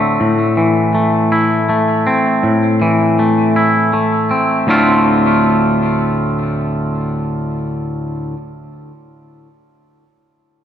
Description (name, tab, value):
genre	rock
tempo	53 BPM (dotted quarters)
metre	6/8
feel	straight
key	D minor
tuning	A4 = 440 Hz
part	twangy electric guitar	arpeggios	0.0-8.4 s	D2 to F4	-12 LUFS	equal	spring reverb, digital delay
room	wet recital hall reverb, RT60 1.6 s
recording	none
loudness	-12 LUFS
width	side -9 dB against mid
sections	0.0-4.7 A section; 4.7-6.9 B section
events	none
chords	0.2 Am; 4.7 Dm7